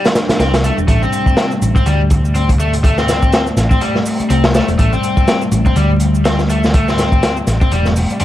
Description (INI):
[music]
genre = breakbeat, breaks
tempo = 123 BPM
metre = 4/4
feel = swing 57% on 16ths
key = A minor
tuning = A4 = 441 Hz
[part]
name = warbly tape-like pad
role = sustained chords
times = 0.0-8.2 s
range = C3 to D4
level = -20 LUFS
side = left 2 dB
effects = chorus, built-in reverb, sidechain pumping
[part]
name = overdriven semi-hollow guitar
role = riff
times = 0.0-8.2 s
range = G3 to C4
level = -19 LUFS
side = left 2 dB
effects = tube saturation, dub echo
[part]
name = shaker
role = drums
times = 0.0-8.2 s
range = none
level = -34 LUFS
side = right 5 dB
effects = overdrive
[part]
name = crunchy breakbeat drum kit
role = drums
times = 0.1-8.2 s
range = hi-hat, kick drum, snare drum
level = -15 LUFS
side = equal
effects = none
[part]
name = hollow-body short-scale fingered electric bass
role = bass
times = 0.3-8.2 s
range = E1 to D2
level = -16 LUFS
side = equal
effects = none
[sound]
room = light reverb, studio ambience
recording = echo-heavy mix, vinyl crackle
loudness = -11 LUFS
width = side -13 dB against mid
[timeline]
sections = 0.0-8.2 A section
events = none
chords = 0.0 Am7